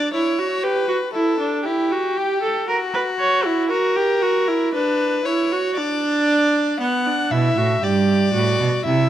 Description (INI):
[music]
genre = classical, baroque-style fugue for string quartet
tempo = 58 BPM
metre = 4/4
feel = straight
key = E minor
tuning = A4 = 441 Hz
[part]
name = warm violin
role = second line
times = 0.0-9.1 s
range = F#4 to F#5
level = -22 LUFS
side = left 4 dB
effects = none
[part]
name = warm viola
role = accompaniment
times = 0.0-9.1 s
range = B3 to C#5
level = -20 LUFS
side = right 3 dB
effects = none
[part]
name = rich cello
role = bass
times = 7.3-9.1 s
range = G2 to C3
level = -18 LUFS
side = right 3 dB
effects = none
[sound]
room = light reverb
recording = close, detailed microphones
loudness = -17 LUFS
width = side -11 dB against mid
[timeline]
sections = 0.0-9.1 A section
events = none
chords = 0.0 Bm (rootless); 0.6 Em; 2.7 F#7; 4.7 Bm/D; 6.8 Em